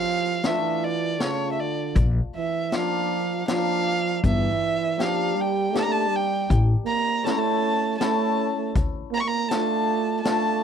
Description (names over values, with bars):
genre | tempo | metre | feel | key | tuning
klezmer | 79 BPM | 3/4 | straight | unclear | A4 = 442 Hz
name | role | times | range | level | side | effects
dark violin | melody | 0.0-10.6 s | C#5 to C#6 | -27 LUFS | right 1 dB | none
breathy trombone | second line | 0.0-10.6 s | C#3 to Bb3 | -26 LUFS | right 13 dB | none
hammered dulcimer | accompaniment | 0.4-10.6 s | A3 to G4 | -28 LUFS | left 13 dB | none
street-band drum kit | drums | 0.4-10.4 s | hi-hat, kick drum, snare drum | -26 LUFS | left 1 dB | none
upright bass | bass | 2.0-9.0 s | G1 to D2 | -22 LUFS | left 1 dB | none
room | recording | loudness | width
light reverb | dry, close 1970s-style studio recording | -21 LUFS | side -8 dB against mid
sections
0.0-10.6 A section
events
none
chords
0.0 Dm; 2.0 Bb; 4.2 Gm; 6.5 A; 8.8 Dm